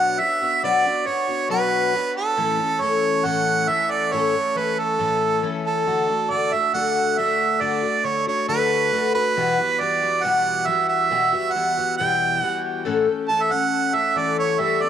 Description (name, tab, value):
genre	rock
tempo	137 BPM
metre	4/4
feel	straight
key	unclear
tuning	A4 = 441 Hz
part	clear harmonica	melody	0.0-14.9 s	A4 to A5	-20 LUFS	right 5 dB	cassette tape, analog delay
part	picked twelve-string acoustic guitar	accompaniment	0.0-14.9 s	E2 to C#5	-24 LUFS	left 7 dB	cassette tape
room	moderate spring reverb, RT60 2.1 s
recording	home recording on cassette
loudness	-18 LUFS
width	side -9 dB against mid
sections	0.0-12.9 A section; 12.9-14.9 B section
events	none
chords	0.0 Bmadd9; 2.4 A; 5.9 D; 9.4 Emadd9; 12.9 A